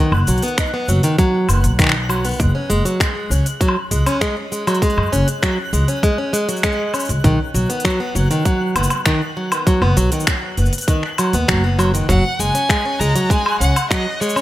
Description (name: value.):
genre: folktronica.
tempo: 99 BPM.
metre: 4/4.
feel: straight.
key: unclear.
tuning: A4 = 440 Hz.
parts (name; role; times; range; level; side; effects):
picked plugged-in steel-string acoustic guitar; arpeggios; 0.0-14.4 s; D#3 to D#4; -19 LUFS; equal; digital delay.
twinkling granular texture; texture; 0.0-14.4 s; F#6; -31 LUFS; equal; built-in reverb.
upright bass; bass; 0.1-13.7 s; F#1 to F#2; -18 LUFS; equal; none.
organic electronic drum kit; drums; 0.1-14.4 s; finger snaps, hi-hat, shaker, woodblock; -22 LUFS; left 1 dB; overdrive.
electronic kick drum; drums; 0.6-14.0 s; none; -19 LUFS; equal; overdrive.
clear violin; melody; 12.1-14.4 s; C#5 to A#5; -20 LUFS; equal; none.
room: light reverb, digital ambience.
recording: none.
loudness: -15 LUFS.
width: side -15 dB against mid.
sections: 0.0-14.4 A section.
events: none.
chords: 0.0 B; 2.4 F#sus2; 7.2 B; 12.1 F#sus2.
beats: 0.58 1.18 1.79 | 2.40 3.00 3.61 4.21 | 4.82 5.43 6.03 6.64 | 7.25 7.85 8.46 9.06 | 9.67 10.28 10.88 11.49 | 12.09 12.70 13.30 13.91.